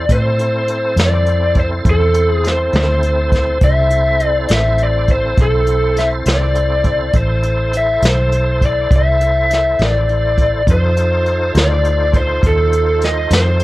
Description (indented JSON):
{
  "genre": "slow blues",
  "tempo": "68 BPM (dotted quarters)",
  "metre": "12/8",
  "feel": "straight",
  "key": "A minor",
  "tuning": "A4 = 440 Hz",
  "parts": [
    { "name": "lead guitar through a small cranked amp", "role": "melody", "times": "0.0-13.6 s", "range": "A4 to E5", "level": "-16 LUFS", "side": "left 1 dB", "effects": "overdrive" },
    { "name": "tonewheel organ", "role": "sustained chords", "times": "0.0-13.6 s", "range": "C4 to C5", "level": "-23 LUFS", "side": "right 1 dB", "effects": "overdrive, chorus vibrato, fast rotary speaker" },
    { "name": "vintage muted fingered electric bass", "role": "bass", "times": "0.0-13.6 s", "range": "A1 to A2", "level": "-16 LUFS", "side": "equal", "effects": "none" },
    { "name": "jazz brush drum kit", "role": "drums", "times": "0.1-13.6 s", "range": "hi-hat, kick drum, snare drum", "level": "-17 LUFS", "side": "equal", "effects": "none" }
  ],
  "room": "light reverb",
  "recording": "worn, warbling old tape, cassette tape, warbly pitch drift",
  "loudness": "-12 LUFS",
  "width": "side -17 dB against mid",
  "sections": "0.0-13.6 A section",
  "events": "none",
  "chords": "0.0 Am; 10.7 F7",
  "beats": "| 0.09 0.97 1.85 2.74 | 3.62 4.50 5.38 6.26 | 7.14 8.02 8.90 9.79 | 10.67 11.55 12.43 13.31"
}